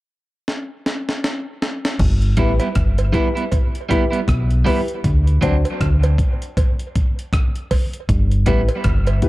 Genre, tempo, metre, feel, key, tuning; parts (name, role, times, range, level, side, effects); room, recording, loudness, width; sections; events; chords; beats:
dub reggae; 79 BPM; 4/4; swing 59% on 16ths; G major; A4 = 440 Hz
breakbeat sampler-style drum kit; drums; 0.5-9.3 s; crash cymbal, hi-hat, kick drum, rim click, snare drum; -19 LUFS; equal
deep dub fingered electric bass; bass; 2.0-9.2 s; G1 to D2; -16 LUFS; equal
electric guitar at the edge of break-up; accompaniment; 2.4-8.6 s; F#3 to E4; -24 LUFS; right 4 dB; dub echo
dark upright piano; stabs; 2.4-9.3 s; D4 to C5; -25 LUFS; left 3 dB; dub echo
cowbell; percussion; 2.6-9.2 s; -29 LUFS; right 5 dB; dub echo
little or no reverb; dark, warm production; -16 LUFS; side -18 dB against mid
0.0-2.0 A section; 2.0-8.1 B section; 8.1-9.3 C section
drum fill 0.5-2.0
0.0 N.C.; 2.0 G6; 5.0 D7; 6.6 N.C.; 8.1 G6
0.47 1.23 | 1.99 2.75 3.52 4.28 | 5.04 5.80 6.56 7.32 | 8.09 8.85